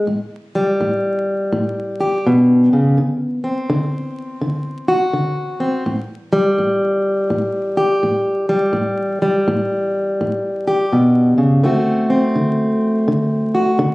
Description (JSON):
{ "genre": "blues", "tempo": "83 BPM", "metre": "4/4", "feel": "swing 64% on 8ths", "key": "unclear", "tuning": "A4 = 439 Hz", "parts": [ { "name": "fingerpicked plugged-in steel-string acoustic guitar", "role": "solo", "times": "0.0-13.9 s", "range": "A2 to G4", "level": "-15 LUFS", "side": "equal", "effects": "none" } ], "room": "light reverb", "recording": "recorded on a phone in the room, studio reverb, vinyl crackle", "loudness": "-15 LUFS", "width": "side -20 dB against mid", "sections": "0.1-13.9 A section", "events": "none", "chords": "0.1 A7(no3); 3.0 D7; 5.9 A7(no3); 11.6 D7" }